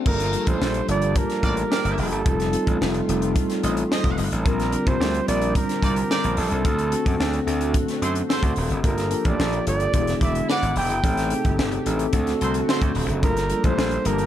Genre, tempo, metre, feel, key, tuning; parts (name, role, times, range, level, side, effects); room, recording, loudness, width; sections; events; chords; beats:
polished 1980s jazz-funk pop; 109 BPM; 4/4; straight; G minor; A4 = 437 Hz
mellow tine electric piano; accompaniment; 0.0-14.3 s; G3 to A5; -26 LUFS; left 2 dB; slow stereo tremolo, wide subtle chorus
breathy flugelhorn; melody; 0.1-14.3 s; A4 to G5; -27 LUFS; right 3 dB
chorused pulse-width pad; sustained chords; 0.1-14.3 s; C3 to G4; -34 LUFS; equal
gritty slap bass; bass; 0.1-14.3 s; Eb1 to F#2; -25 LUFS; equal; overdrive
crisp fusion drum kit; drums; 0.1-14.3 s; crash cymbal, hi-hat, kick drum, snare drum; -25 LUFS; equal
warm horn section; second line; 1.4-13.1 s; F4 to Eb5; -30 LUFS; right 2 dB
light reverb, small room ambience; dark, warm production; -20 LUFS; side -11 dB against mid
0.1-14.3 A section
0.1 Gm7; 2.3 F7; 4.5 Bb69; 6.6 D7; 8.8 Gm7; 9.9 E7; 11.0 Am7b5; 12.1 D7; 13.2 Gm7
| 0.06 0.61 1.16 1.71 | 2.26 2.81 3.36 3.90 | 4.45 5.00 5.55 6.10 | 6.65 7.20 7.75 8.29 | 8.84 9.39 9.94 10.49 | 11.04 11.59 12.13 12.68 | 13.23 13.78